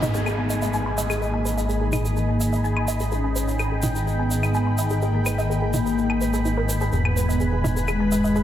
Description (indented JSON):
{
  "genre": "melodic techno",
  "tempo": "126 BPM",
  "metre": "4/4",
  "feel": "straight",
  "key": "G# harmonic minor",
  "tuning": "A4 = 441 Hz",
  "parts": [
    { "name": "mellow synth brass", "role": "melody", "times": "0.0-8.4 s", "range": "G#3 to D#4", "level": "-27 LUFS", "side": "left 1 dB", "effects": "chorus, analog delay" },
    { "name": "lush unison pad", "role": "sustained chords", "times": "0.0-8.4 s", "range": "D#4 to B5", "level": "-29 LUFS", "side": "equal", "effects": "chorus, phaser" },
    { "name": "woody wave-folded pluck", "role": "arpeggios", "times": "0.0-8.4 s", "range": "D#4 to B5", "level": "-30 LUFS", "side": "equal", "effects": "lush chorus, analog delay" },
    { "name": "fat analog bass", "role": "bass", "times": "0.0-8.4 s", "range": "E1 to G#1", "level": "-25 LUFS", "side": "equal", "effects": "none" },
    { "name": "swarming drone", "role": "drone", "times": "1.0-8.4 s", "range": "G#2 to D#3", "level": "-31 LUFS", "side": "left 1 dB", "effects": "built-in reverb, lush chorus" },
    { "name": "electronic toms and claves", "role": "drums", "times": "0.0-8.0 s", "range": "none", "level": "-30 LUFS", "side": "equal", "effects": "none" },
    { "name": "tube shaker", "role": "percussion", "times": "0.0-8.4 s", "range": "none", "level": "-34 LUFS", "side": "right 3 dB", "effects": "none" },
    { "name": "downlifter", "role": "sound effects", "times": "0.0-3.1 s", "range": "none", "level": "-33 LUFS", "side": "equal", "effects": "none" }
  ],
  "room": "moderate lush hall reverb, RT60 2.1 s",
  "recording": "dreamy mix soaked in reverb",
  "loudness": "-20 LUFS",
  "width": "side -11 dB against mid",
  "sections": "0.0-8.4 A section",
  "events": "filter sweep on analog polysynth 0.0-8.4",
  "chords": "0.0 G#m; 6.9 E"
}